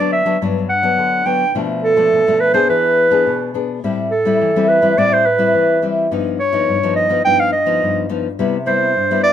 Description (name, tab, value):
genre	samba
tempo	105 BPM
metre	4/4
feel	straight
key	unclear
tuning	A4 = 439 Hz
part	warm clarinet	melody	0.0-9.3 s	A4 to G5	-14 LUFS	right 2 dB	plate reverb
part	nylon-string guitar	accompaniment	0.0-9.3 s	G2 to G#4	-17 LUFS	left 4 dB	none
room	moderate small room reverb, RT60 0.5 s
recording	none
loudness	-13 LUFS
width	side -10 dB against mid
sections	0.0-9.3 A section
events	none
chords	0.0 Gmaj7; 1.6 Bm7b5; 2.7 E7; 3.8 Am7; 6.1 Gaug7; 8.4 Cmaj7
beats	0.41 0.98 | 1.55 2.12 2.69 3.27 | 3.83 4.41 4.98 5.55 | 6.12 6.68 7.25 7.82 | 8.39 8.96